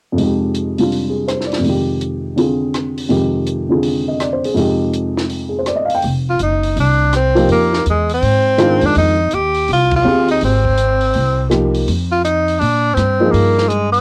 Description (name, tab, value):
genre	modal jazz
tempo	164 BPM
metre	4/4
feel	swing 64% on 8ths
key	F dorian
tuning	A4 = 440 Hz
part	dark upright piano	accompaniment	0.1-13.7 s	F2 to G5	-18 LUFS	equal	cassette tape
part	compact cocktail drum kit	drums	0.2-14.0 s	hi-hat, kick drum, ride cymbal, rim click, snare drum	-30 LUFS	equal	cassette tape
part	upright bass	bass	6.0-14.0 s	F1 to Bb2	-20 LUFS	equal	none
part	breathy tenor saxophone	melody	6.3-14.0 s	Ab3 to G4	-17 LUFS	equal	cassette tape
room	light reverb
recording	home recording on cassette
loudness	-16 LUFS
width	mono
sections	0.2-6.0 A section; 6.0-14.0 B section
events	band accent 9.9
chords	0.2 Fm9; 11.9 Eb/F